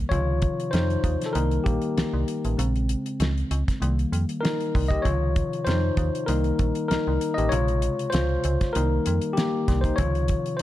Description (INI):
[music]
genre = lush 1970s-style soul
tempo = 97 BPM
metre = 4/4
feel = swing 54% on 16ths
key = unclear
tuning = A4 = 440 Hz
[part]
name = bright tine electric piano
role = accompaniment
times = 0.0-10.6 s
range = C3 to Eb5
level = -25 LUFS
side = left 2 dB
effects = none
[part]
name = metallic FM bass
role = bass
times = 0.0-10.4 s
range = A1 to F2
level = -25 LUFS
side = right 1 dB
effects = none
[part]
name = damped 70s drum kit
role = drums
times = 0.1-10.6 s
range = hi-hat, kick drum, snare drum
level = -28 LUFS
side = equal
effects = none
[sound]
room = light reverb, small room ambience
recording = dark, warm production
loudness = -22 LUFS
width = side -14 dB against mid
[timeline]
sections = 0.0-10.6 A section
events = tine electric piano solo 0.0-10.6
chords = 0.1 Dbmaj9; 1.3 Eb6; 2.6 Bbm7; 3.8 Cm7; 5.1 Dbmaj9; 6.3 Eb6; 7.5 Bbm7; 8.8 Cm7; 10.0 Dbmaj9